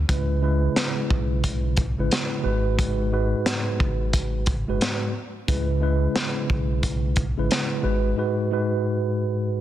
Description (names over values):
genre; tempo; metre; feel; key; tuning
hip hop, boom-bap hip-hop; 89 BPM; 4/4; swing 63% on 16ths; C# minor; A4 = 444 Hz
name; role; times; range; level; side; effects
sub bass with octave; bass; 0.0-8.1 s; F#1 to C#2; -24 LUFS; equal; none
mellow tine electric piano; accompaniment; 0.1-9.6 s; G#2 to B4; -25 LUFS; right 1 dB; medium stereo tremolo, cassette tape, high-pass filter, low-pass filter
crunchy breakbeat drum kit; drums; 0.1-7.7 s; hi-hat, kick drum, snare drum; -25 LUFS; equal; vintage 12-bit sampler grit
room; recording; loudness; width
light reverb, small room ambience; dense, heavily limited modern master; -21 LUFS; side -12 dB against mid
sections
0.0-9.6 A section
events
none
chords
0.1 C#m7; 2.4 G#m7; 5.5 C#m7; 7.8 G#m7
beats
| 0.09 0.76 1.44 2.11 | 2.79 3.46 4.13 4.81 | 5.48 6.16 6.83 7.50 | 8.18 8.85 9.53